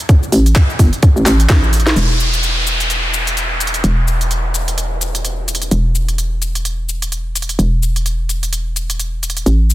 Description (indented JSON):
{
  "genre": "bass house",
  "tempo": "128 BPM",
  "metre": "4/4",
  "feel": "swing 58% on 16ths",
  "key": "unclear",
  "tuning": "A4 = 438 Hz",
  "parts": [
    { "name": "garage drum kit", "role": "drums", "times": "0.0-9.7 s", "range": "cabasa, handclaps, hi-hat, snare drum", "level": "-20 LUFS", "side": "equal", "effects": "soft clipping on snare" },
    { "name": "electronic kick drum", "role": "drums", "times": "0.1-1.6 s", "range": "none", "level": "-11 LUFS", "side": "equal", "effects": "none" },
    { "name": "hollow knocking FM bass", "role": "bass", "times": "0.3-9.7 s", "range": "E1 to A1", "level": "-16 LUFS", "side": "equal", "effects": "overdrive, sidechain pumping" },
    { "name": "downlifter", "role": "sound effects", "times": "2.0-5.7 s", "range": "none", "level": "-20 LUFS", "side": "equal", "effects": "none" }
  ],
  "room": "little or no reverb",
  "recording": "dense, heavily limited modern master",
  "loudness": "-13 LUFS",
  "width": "side -16 dB against mid",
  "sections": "0.0-2.0 A section; 2.0-9.7 B section",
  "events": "drum fill 1.5-2.0",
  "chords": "none"
}